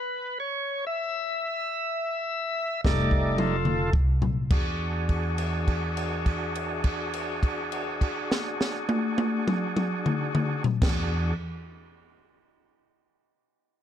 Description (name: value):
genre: slow blues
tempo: 34-44 BPM (dotted quarters)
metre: 12/8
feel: straight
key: E mixolydian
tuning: A4 = 443 Hz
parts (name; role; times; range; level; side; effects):
- overdriven tonewheel organ; sustained chords; 0.0-11.3 s; G3 to E5; -29 LUFS; equal; slow rotary speaker
- upright bass; bass; 2.8-11.3 s; F1 to E2; -29 LUFS; equal; none
- compact cocktail drum kit; drums; 2.8-11.1 s; crash cymbal, kick drum, snare drum, toms; -27 LUFS; equal; none
room: little or no reverb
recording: dark, warm production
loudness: -25 LUFS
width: side -10 dB against mid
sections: 0.0-4.5 A section; 4.5-11.5 B section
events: slowing down 0.0-4.5; tonewheel organ solo 0.0-4.5; stop 0.0-2.8; drum fill 2.8-4.5; held note 4.5-10.8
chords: 0.0 E5; 2.8 F9; 4.5 E9